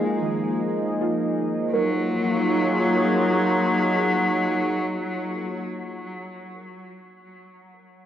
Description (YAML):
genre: ambient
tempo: free time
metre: none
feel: none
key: Eb minor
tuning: A4 = 440 Hz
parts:
  - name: clear cello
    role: melody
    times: 0.0-5.7 s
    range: Gb3 to Ab3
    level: -26 LUFS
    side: left 1 dB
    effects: analog delay
  - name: warbly tape-like pad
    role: sustained chords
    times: 0.0-5.7 s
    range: F3 to Eb5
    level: -24 LUFS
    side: equal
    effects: chorus, built-in reverb, cassette tape
  - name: soft round pluck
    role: arpeggios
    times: 0.0-5.9 s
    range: F4 to Bb4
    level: -31 LUFS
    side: right 4 dB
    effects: lush chorus, cassette tape, analog delay
room: wet spring reverb, RT60 2.8 s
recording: home recording on cassette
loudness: -20 LUFS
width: side -10 dB against mid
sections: 0.0-1.7 A section; 1.7-4.9 B section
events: none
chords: 0.0 Ebsus4; 1.7 Ebm11